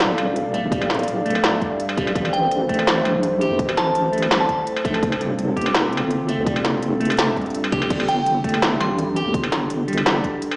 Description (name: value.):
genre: half-time drum and bass.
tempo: 167 BPM.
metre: 4/4.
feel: half-time.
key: unclear.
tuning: A4 = 440 Hz.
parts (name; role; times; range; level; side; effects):
dark analog pad; sustained chords; 0.0-10.6 s; G3 to F5; -24 LUFS; equal; chorus, vintage 12-bit sampler grit, sidechain pumping.
deep soft wobble bass; bass; 0.0-10.2 s; D1 to F2; -24 LUFS; equal; chorus.
industrial drum kit; drums; 0.0-10.6 s; crash cymbal, hi-hat, snare drum, struck metal; -22 LUFS; equal; none.
electric guitar at the edge of break-up; arpeggios; 0.5-10.2 s; G2 to G4; -26 LUFS; equal; phaser, dub echo.
electronic kick drum; drums; 0.7-10.3 s; none; -26 LUFS; equal; none.
glassy synth bell; melody; 2.3-4.5, 8.1-9.2 s; G5 to C6; -24 LUFS; equal; chorus, phaser, vintage 12-bit sampler grit, digital delay.
room: moderate digital room reverb, RT60 1.2 s.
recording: played on a big sound system in a bare room, stone room reverb, small speaker sound.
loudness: -18 LUFS.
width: side -27 dB against mid.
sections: 0.0-10.6 A section.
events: none.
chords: 0.0 Dm; 2.2 Am; 5.0 F; 7.9 G5.